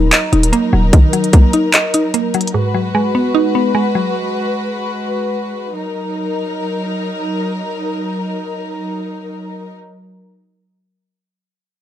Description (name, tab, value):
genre	hip hop, trap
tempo	149 BPM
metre	4/4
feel	half-time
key	Eb minor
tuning	A4 = 443 Hz
part	mallet-like synth pluck	accompaniment	0.0-5.0 s	Ab2 to Eb5	-16 LUFS	right 1 dB	chorus
part	dark studio string section	sustained chords	0.0-9.7 s	Gb3 to Cb5	-20 LUFS	left 1 dB	none
part	hard-hitting 808-style bass	bass	0.0-0.9 s	Eb1	-14 LUFS	equal	none
part	trap drum kit	drums	0.1-2.5 s	handclaps, hi-hat, kick drum	-10 LUFS	equal	none
room	little or no reverb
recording	dry, gritty hardware recording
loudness	-14 LUFS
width	side -11 dB against mid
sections	0.0-5.8 A section; 5.8-9.0 B section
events	none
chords	0.0 Ebm; 2.5 Abm7; 5.8 Ebm